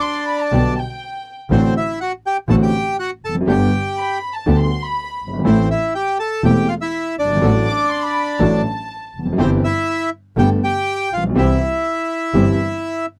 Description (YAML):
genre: tango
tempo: 122 BPM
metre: 4/4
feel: rubato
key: C major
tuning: A4 = 440 Hz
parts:
  - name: bandoneon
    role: melody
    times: 0.0-13.1 s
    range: C4 to A5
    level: -22 LUFS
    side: equal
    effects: none
  - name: warm studio violin section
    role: second line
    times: 0.0-9.3 s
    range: G5 to D6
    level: -27 LUFS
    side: equal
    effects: none
  - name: warm grand piano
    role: accompaniment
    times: 0.5-12.6 s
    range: E1 to A4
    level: -20 LUFS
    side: equal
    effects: none
  - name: dark chamber string section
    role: stabs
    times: 0.5-12.6 s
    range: A3 to A4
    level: -26 LUFS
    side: equal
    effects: none
  - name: warm double bass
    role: bass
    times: 0.5-12.5 s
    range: E1 to D2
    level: -22 LUFS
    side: equal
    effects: none
room: little or no reverb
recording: dry, close 1970s-style studio recording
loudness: -18 LUFS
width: mono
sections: 0.0-13.2 A section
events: none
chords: 0.0 G; 1.5 D7/A; 3.5 G; 5.5 Am; 7.4 D/A; 9.4 C/G; 10.4 Gadd9; 11.4 C